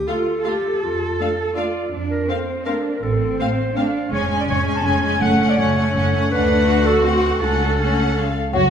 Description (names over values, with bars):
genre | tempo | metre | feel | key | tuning
cinematic, playful, whimsical film cue | 164 BPM | 3/4 | straight | F# minor from 4.1 s | A4 = 440 Hz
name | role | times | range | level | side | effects
clear clarinet | second line | 0.0-8.4 s | C#4 to A5 | -22 LUFS | left 1 dB | none
rich chamber double bass section | bass | 0.0-8.7 s | E#1 to F2 | -24 LUFS | right 2 dB | none
rich studio violin section | melody | 0.1-8.7 s | F#4 to G#5 | -28 LUFS | left 3 dB | none
rich studio violin section | second line | 0.1-8.7 s | C4 to F#4 | -26 LUFS | left 4 dB | none
rich chamber viola section | accompaniment | 0.1-8.2 s | G#3 to A3 | -25 LUFS | right 1 dB | none
warm chamber cello section | bass | 0.1-8.7 s | F#2 to A4 | -24 LUFS | right 2 dB | none
worn celesta | melody | 8.5-8.7 s | F#5 | -19 LUFS | equal | none
hollow concert flute | second line | 8.5-8.6 s | C#5 | -24 LUFS | equal | none
mellow French horn section | sustained chords | 8.6 s | F#3 | -25 LUFS | left 3 dB | none
room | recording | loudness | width
wet recital hall reverb, RT60 1.5 s | heard from further back in the room | -17 LUFS | side -8 dB against mid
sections
0.0-8.5 A section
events
none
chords
0.0 Dm (rootless); 0.8 Dm/F; 1.9 F; 3.0 F/A; 4.1 C#/E#; 5.2 F#m; 6.3 D; 7.4 F#m/C#; 8.2 C#